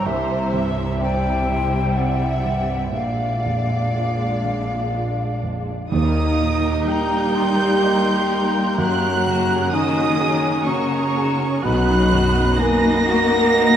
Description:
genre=cinematic, emotional film score for orchestra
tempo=62 BPM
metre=3/4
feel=rubato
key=unclear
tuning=A4 = 440 Hz
part: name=warm studio violin section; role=melody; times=0.0-13.8 s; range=C5 to Bb6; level=-27 LUFS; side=right 4 dB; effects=none
part: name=hollow concert flute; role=second line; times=0.0-13.8 s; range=E5 to C6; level=-26 LUFS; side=left 3 dB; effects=none
part: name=rich studio violin section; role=second line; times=0.0-13.8 s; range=G3 to E5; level=-30 LUFS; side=equal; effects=none
part: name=rich studio viola section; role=accompaniment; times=0.0-13.8 s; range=G3 to E4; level=-28 LUFS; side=left 2 dB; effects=none
part: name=warm grand piano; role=accompaniment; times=0.0-13.8 s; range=Bb1 to Eb5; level=-27 LUFS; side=right 4 dB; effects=none
part: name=rich studio double bass section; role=bass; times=0.0-12.4 s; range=Bb1 to Gb2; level=-24 LUFS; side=equal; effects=none
part: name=rich studio cello section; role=bass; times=0.1-13.8 s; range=Bb2 to Bb3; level=-25 LUFS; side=left 1 dB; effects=none
part: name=warm oboe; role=second line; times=5.9-13.8 s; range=Db5 to Bb5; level=-26 LUFS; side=right 3 dB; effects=none
part: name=mellow French horn section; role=sustained chords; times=5.9-13.8 s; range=Db4 to Bb4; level=-22 LUFS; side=equal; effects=none
part: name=timpani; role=percussion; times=5.9-7.3 s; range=Eb3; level=-29 LUFS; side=right 6 dB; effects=none
room=wet huge ambient reverb, RT60 7.7 s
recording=in a vast, echoing space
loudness=-17 LUFS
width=side -9 dB against mid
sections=0.0-5.9 A section; 5.9-13.8 B section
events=none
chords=0.1 C; 2.9 Bb7; 5.9 Eb; 8.8 Gbadd9; 11.6 B

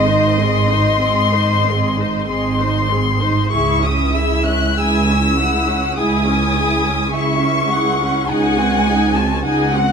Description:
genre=classical, slow romantic movement for string orchestra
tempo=47-53 BPM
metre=4/4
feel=rubato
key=C# minor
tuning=A4 = 440 Hz
part: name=rich chamber violin section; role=melody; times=0.0-9.9 s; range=F#5 to F#6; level=-20 LUFS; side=left 4 dB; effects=none
part: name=dark chamber violin section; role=second line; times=0.0-9.9 s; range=D#5 to G#5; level=-22 LUFS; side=left 2 dB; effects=none
part: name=rich chamber viola section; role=accompaniment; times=0.0-9.9 s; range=B#3 to B#4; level=-21 LUFS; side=equal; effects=none
part: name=rich chamber double bass section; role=bass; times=0.0-9.9 s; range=G#1 to C#2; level=-21 LUFS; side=right 3 dB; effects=none
part: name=rich studio cello section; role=bass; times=0.0-9.9 s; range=C#2 to G#2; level=-21 LUFS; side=right 3 dB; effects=none
room=moderate recital hall reverb, RT60 1.4 s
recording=close, detailed microphones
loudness=-14 LUFS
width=side -6 dB against mid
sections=0.0-9.9 A section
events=none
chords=0.0 G#; 3.5 C#m; 8.3 G#7/C#

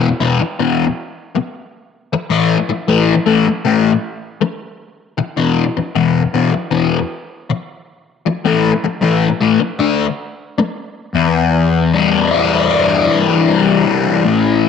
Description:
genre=rock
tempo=78 BPM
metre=4/4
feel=straight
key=E minor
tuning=A4 = 440 Hz
part: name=fuzz guitar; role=solo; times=0.0-14.7 s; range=E2 to E4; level=-13 LUFS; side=left 5 dB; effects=distortion, phaser
room=wet spring reverb, RT60 1.6 s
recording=none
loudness=-13 LUFS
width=side -6 dB against mid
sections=0.0-11.2 A section; 11.2-14.7 B section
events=none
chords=0.0 E5; 1.9 A5; 5.0 E5; 8.1 A5; 9.6 D5; 11.2 Em7

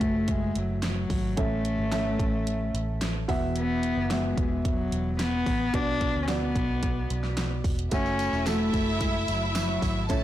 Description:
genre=piano-driven pop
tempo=110 BPM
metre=4/4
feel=straight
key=F# minor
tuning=A4 = 439 Hz
part: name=warm cello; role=melody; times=0.0-10.2 s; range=F#3 to D4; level=-30 LUFS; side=left 2 dB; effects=none
part: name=warm baby grand piano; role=accompaniment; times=0.0-10.2 s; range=B2 to E5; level=-31 LUFS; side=right 1 dB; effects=none
part: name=vintage muted fingered electric bass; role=bass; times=0.0-10.2 s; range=E1 to D2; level=-31 LUFS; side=right 1 dB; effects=none
part: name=pop drum kit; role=drums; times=0.0-10.2 s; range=hi-hat, kick drum, snare drum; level=-30 LUFS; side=equal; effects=none
part: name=rich studio violin section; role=second line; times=7.9-10.2 s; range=E4 to A5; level=-31 LUFS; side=equal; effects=none
part: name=tambourine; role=percussion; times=7.9-10.2 s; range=none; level=-44 LUFS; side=right 8 dB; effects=none
room=light reverb, small room ambience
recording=blown-out, overdriven recording, overdrive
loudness=-24 LUFS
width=side -13 dB against mid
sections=0.0-10.2 A section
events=none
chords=0.0 F#m7; 1.4 A; 3.3 Esus2; 5.7 Bm; 7.9 F#m7

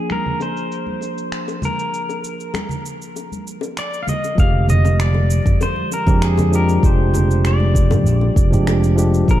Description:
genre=sunset chillout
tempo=98 BPM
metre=4/4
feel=straight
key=F dorian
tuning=A4 = 440 Hz
part: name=pedal steel guitar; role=melody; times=0.0-9.4 s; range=Ab4 to F5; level=-25 LUFS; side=left 1 dB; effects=digital delay
part: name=bright tine electric piano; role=accompaniment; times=0.0-9.4 s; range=D3 to Ab4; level=-23 LUFS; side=moving between left 5 dB and right 2 dB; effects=auto-pan, ping-pong delay
part: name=deep house drum kit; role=drums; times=0.1-9.4 s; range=cabasa, finger snaps, toms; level=-25 LUFS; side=right 1 dB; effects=none
part: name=congas and bongos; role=percussion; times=0.1-9.1 s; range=none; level=-27 LUFS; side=left 1 dB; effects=none
part: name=fingered electric bass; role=bass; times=4.4-9.4 s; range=F1 to F2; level=-16 LUFS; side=equal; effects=none
part: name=electronic kick drum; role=drums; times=4.4-9.4 s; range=none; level=-16 LUFS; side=equal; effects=none
room=light reverb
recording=dark, warm production, low-pass filter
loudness=-15 LUFS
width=side -13 dB against mid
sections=0.0-4.4 A section; 4.4-9.4 B section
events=filter sweep on tine electric piano 0.0-4.4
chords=0.0 Bb7; 4.4 Fm69

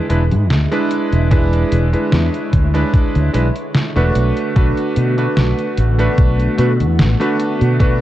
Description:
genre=vaporwave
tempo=74 BPM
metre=4/4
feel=swing 53% on 16ths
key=B dorian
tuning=A4 = 440 Hz
part: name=bright electric grand piano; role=accompaniment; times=0.0-8.0 s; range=G#3 to B4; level=-19 LUFS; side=right 1 dB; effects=wide subtle chorus, analog delay
part: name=soft string machine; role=sustained chords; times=0.0-8.0 s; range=D3 to C#5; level=-25 LUFS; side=equal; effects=phaser, ensemble chorus
part: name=fretless electric bass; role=bass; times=0.1-8.0 s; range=E1 to B2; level=-15 LUFS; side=equal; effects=ensemble chorus
part: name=detuned 8-bit digital drum machine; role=drums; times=0.1-8.0 s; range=hi-hat, snare drum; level=-19 LUFS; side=equal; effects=none
part: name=electronic kick drum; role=drums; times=1.3-8.0 s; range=none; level=-14 LUFS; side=equal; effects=none
room=light reverb, digital ambience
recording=echo-heavy mix, cassette tape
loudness=-13 LUFS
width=side -14 dB against mid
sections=0.0-8.0 A section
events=none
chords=0.0 E7; 4.2 Bm7

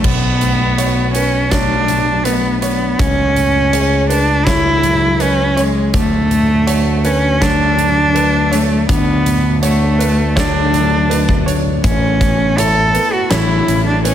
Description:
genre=post-rock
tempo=81 BPM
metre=4/4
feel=straight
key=unclear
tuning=A4 = 440 Hz
part: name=clear cello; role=melody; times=0.0-14.1 s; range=G#3 to A4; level=-15 LUFS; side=right 1 dB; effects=slapback echo
part: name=felt-muted upright piano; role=arpeggios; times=0.0-14.1 s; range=B4 to C#5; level=-25 LUFS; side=right 4 dB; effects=slapback echo
part: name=mellow electric guitar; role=arpeggios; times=0.0-14.1 s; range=A2 to G#4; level=-22 LUFS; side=left 4 dB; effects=slapback echo
part: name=growling fingered electric bass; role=bass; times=0.0-14.1 s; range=A1 to D2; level=-17 LUFS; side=equal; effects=overdrive
part: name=huge arena drum kit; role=drums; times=0.0-14.1 s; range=crash cymbal, hi-hat, kick drum, snare drum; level=-19 LUFS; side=equal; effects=none
room=light reverb, small room ambience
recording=none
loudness=-12 LUFS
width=side -10 dB against mid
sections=0.0-11.8 A section; 11.8-14.1 B section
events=none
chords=0.0 Bm7; 3.0 F#madd9/C#; 5.9 D; 11.8 Aadd9

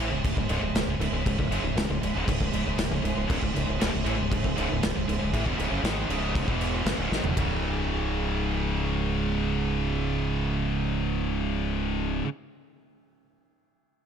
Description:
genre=heavy metal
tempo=118 BPM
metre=4/4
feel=straight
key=C# minor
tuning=A4 = 440 Hz
part: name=high-gain distorted guitar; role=riff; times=0.0-12.3 s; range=C#2 to G#3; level=-33 LUFS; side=left 11 dB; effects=distortion
part: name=high-gain distorted guitar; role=riff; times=0.0-12.3 s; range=C#2 to G#3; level=-32 LUFS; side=right 11 dB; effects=distortion
part: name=growling fingered electric bass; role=bass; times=0.0-12.2 s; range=C#1 to A1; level=-31 LUFS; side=left 1 dB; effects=overdrive
part: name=modern studio drum kit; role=drums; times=0.2-7.5 s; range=crash cymbal, kick drum, ride cymbal, snare drum, toms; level=-29 LUFS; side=equal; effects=none
part: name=high-gain distorted guitar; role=riff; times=3.3-12.3 s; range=C#2 to G#3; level=-33 LUFS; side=equal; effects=distortion
room=small room reverb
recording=dark, warm production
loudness=-25 LUFS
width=side -8 dB against mid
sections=0.0-7.4 A section; 7.4-11.4 B section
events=drum fill 7.1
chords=0.0 C#m; 7.4 C#5

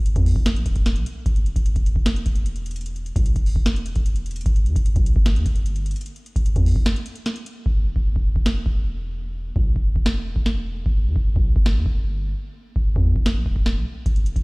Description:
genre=hip hop, trap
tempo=150 BPM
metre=4/4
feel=half-time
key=E minor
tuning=A4 = 440 Hz
part: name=long sustained 808-style bass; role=bass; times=0.0-14.4 s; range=D1 to E2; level=-23 LUFS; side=equal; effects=none
part: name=booming analog drum machine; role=drums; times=0.1-14.4 s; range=hi-hat, kick drum, snare drum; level=-21 LUFS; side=equal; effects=none
room=little or no reverb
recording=played on a big sound system in a bare room, stone room reverb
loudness=-19 LUFS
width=side -29 dB against mid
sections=0.0-7.7 A section; 7.7-14.4 B section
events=break 6.9-7.7; hi-hats muted 7.7-14.1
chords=none

